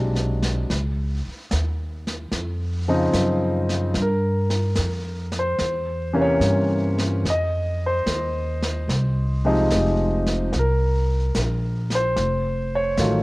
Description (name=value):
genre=jazz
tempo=74 BPM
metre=4/4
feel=swing 68% on 8ths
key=unclear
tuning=A4 = 440 Hz
part: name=clear concert grand piano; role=accompaniment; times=0.0-13.2 s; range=C3 to Eb5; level=-23 LUFS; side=equal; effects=cassette tape
part: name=upright bass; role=bass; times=0.0-13.2 s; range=F1 to G2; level=-23 LUFS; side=equal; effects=none
part: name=jazz brush drum kit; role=drums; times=0.2-13.2 s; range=brushed snare drum, hi-hat, snare drum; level=-30 LUFS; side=equal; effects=cassette tape
room=studio reverb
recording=home recording on cassette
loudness=-20 LUFS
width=side -21 dB against mid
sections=0.0-13.2 A section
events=none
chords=0.0 D7#11; 0.7 Dbmaj9; 4.0 Fsus24; 5.6 C7b9; 7.2 Fm7; 10.5 Bbsus2; 12.2 F7b9